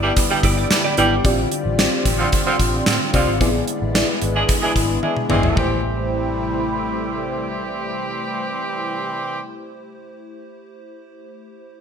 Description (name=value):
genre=1980s-style pop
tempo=111 BPM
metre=4/4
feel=straight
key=A minor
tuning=A4 = 440 Hz
part: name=FM electric piano with soft pad layer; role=accompaniment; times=0.0-11.8 s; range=A3 to G#5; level=-24 LUFS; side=left 2 dB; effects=chorus
part: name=phased analog pad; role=sustained chords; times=0.0-9.4 s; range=C3 to F4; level=-27 LUFS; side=equal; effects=phaser, chorus
part: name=direct-recorded clean electric guitar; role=riff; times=0.0-1.2 s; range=E4 to D5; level=-27 LUFS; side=right 2 dB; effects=ensemble chorus, ping-pong delay
part: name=warm horn section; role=stabs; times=0.0-9.4 s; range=D3 to G#4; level=-24 LUFS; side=right 3 dB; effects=none
part: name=vintage muted fingered electric bass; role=bass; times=0.0-9.4 s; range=G1 to A2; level=-25 LUFS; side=equal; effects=none
part: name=gated 80s drum kit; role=drums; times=0.2-5.7 s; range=hi-hat, kick drum, snare drum, toms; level=-20 LUFS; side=equal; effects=gated reverb
room=moderate plate reverb, RT60 2.0 s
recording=bright 1980s-style digital production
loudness=-17 LUFS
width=side -7 dB against mid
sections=0.0-5.6 A section; 5.6-9.9 B section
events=FM electric piano fill 4.8-5.6; drum fill 5.0-5.6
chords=0.0 Em7; 1.2 G7sus4/A; 3.4 E7; 5.6 Am7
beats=0.17 0.70 | 1.25 1.79 2.33 2.87 | 3.41 3.95 4.49 5.03 | 5.57 6.11 6.65 7.19 | 7.73 8.27 8.81 9.35